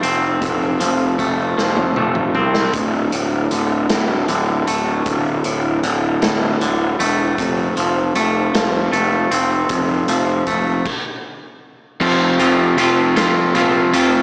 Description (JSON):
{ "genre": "quiet-loud alternative rock", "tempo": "52 BPM (dotted quarters)", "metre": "6/8", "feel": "straight", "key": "unclear", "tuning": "A4 = 440 Hz", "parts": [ { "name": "twangy electric guitar", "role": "arpeggios", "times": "0.0-14.2 s", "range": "D2 to F4", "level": "-21 LUFS", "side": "equal", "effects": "slapback echo" }, { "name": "fuzz picked electric bass", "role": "bass", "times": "0.0-14.2 s", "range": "D1 to C2", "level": "-22 LUFS", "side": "equal", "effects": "overdrive" }, { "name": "raw garage drum kit", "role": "drums", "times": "0.0-14.1 s", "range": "crash cymbal, hi-hat, kick drum, snare drum, toms", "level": "-26 LUFS", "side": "equal", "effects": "none" }, { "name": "overdriven electric guitar", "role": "riff", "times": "12.0-14.2 s", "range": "F2 to F3", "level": "-18 LUFS", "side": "equal", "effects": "none" } ], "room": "light reverb, small room ambience", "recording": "small speaker sound", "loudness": "-17 LUFS", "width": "mono", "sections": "0.0-12.0 A section; 12.0-14.2 B section", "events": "drum fill 1.6-2.7; stop 10.9-12.0", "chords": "0.0 F; 2.7 D5; 7.4 F", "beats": "| 0.43 1.59 | 2.75 3.91 | 5.07 6.22 | 7.38 8.54 | 9.70 10.85 | 12.01 13.16" }